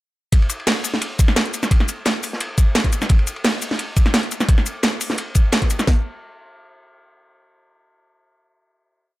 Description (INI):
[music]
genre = drum and bass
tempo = 173 BPM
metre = 4/4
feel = straight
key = none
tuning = none
[part]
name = crunchy breakbeat drum kit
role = drums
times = 0.3-5.9 s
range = hi-hat, ride cymbal, snare drum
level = -28 LUFS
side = equal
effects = high-pass filter on cymbals, high-pass filter on hats, high-pass filter on snare, high-pass filter on room
[part]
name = drum and bass drum kit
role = drums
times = 0.3-6.0 s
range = kick drum, snare drum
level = -15 LUFS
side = equal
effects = none
[part]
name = drum and bass drum kit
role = drums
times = 0.3-5.9 s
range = hi-hat, shaker, snare drum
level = -20 LUFS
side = equal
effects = none
[sound]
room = little or no reverb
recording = none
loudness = -16 LUFS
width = side -18 dB against mid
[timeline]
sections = 0.3-5.9 drop; 5.9-8.6 final hit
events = drop 0.3-5.9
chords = none